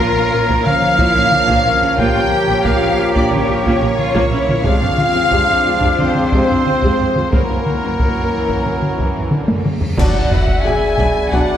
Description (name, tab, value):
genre	cinematic, epic orchestral film score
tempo	90 BPM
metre	4/4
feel	straight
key	unclear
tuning	A4 = 440 Hz
part	rich studio violin section	melody	0.0-11.6 s	Bb4 to G#5	-22 LUFS	left 4 dB	none
part	rich symphonic violin section	second line	0.0-11.4 s	Bb4 to B5	-27 LUFS	left 4 dB	none
part	rich symphonic viola section	accompaniment	0.0-11.4 s	C3 to F4	-23 LUFS	right 2 dB	none
part	clear trombone section	sustained chords	0.0-11.6 s	E3 to D4	-25 LUFS	right 2 dB	none
part	mellow French horn section	sustained chords	0.0-11.6 s	F3 to G#4	-23 LUFS	left 4 dB	none
part	warm woodwind section	sustained chords	0.0-11.6 s	F3 to F#5	-26 LUFS	right 1 dB	none
part	mellow trumpet section	stabs	0.0-11.6 s	Bb4 to G#5	-20 LUFS	equal	none
part	rich symphonic cello section	bass	0.0-11.4 s	B2 to G4	-25 LUFS	right 2 dB	none
part	warm symphonic double bass section	bass	0.0-11.4 s	Bb1 to F#2	-25 LUFS	right 3 dB	none
part	taiko ensemble	drums	0.5-11.6 s	none	-19 LUFS	equal	none
part	cymbal swell, clash cymbals and concert bass drum	percussion	7.3-11.3 s	none	-22 LUFS	equal	none
part	reverse cymbal and impact	sound effects	9.7-11.6 s	none	-29 LUFS	equal	none
part	small flute group	second line	10.0-11.6 s	D5 to E5	-23 LUFS	equal	none
room	wet concert hall reverb, RT60 2.6 s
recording	none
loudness	-13 LUFS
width	side -10 dB against mid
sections	0.0-10.0 A section; 10.0-11.6 B section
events	drum fill 9.3-10.0; reverse cymbal 9.7; band accent 10.0-10.7; impact 10.0-11.6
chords	0.0 Bbm; 4.7 Fm; 7.3 F#7; 10.0 Bm